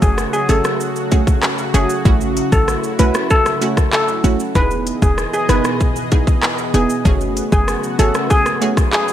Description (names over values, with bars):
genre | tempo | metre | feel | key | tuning
dancehall | 96 BPM | 4/4 | straight | F# dorian | A4 = 440 Hz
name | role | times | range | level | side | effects
steel pan | melody | 0.0-9.1 s | G#4 to B4 | -20 LUFS | left 1 dB | digital delay
analog pluck | accompaniment | 0.0-8.8 s | A3 to A4 | -22 LUFS | right 4 dB | chorus, sidechain pumping
lush unison pad | sustained chords | 0.0-9.1 s | B2 to D#5 | -24 LUFS | left 1 dB | chorus, sidechain pumping
short 808-style bass | bass | 0.0-8.1 s | E1 to B1 | -17 LUFS | equal | none
island pop drum kit | drums | 0.0-9.1 s | handclaps, hi-hat, kick drum, rim click, shaker | -17 LUFS | equal | overdrive
room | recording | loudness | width
digital ambience | none | -14 LUFS | side -11 dB against mid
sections
0.0-9.1 A section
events
none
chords
0.0 F#madd9; 2.1 A6; 4.6 Emaj7; 7.1 F#madd9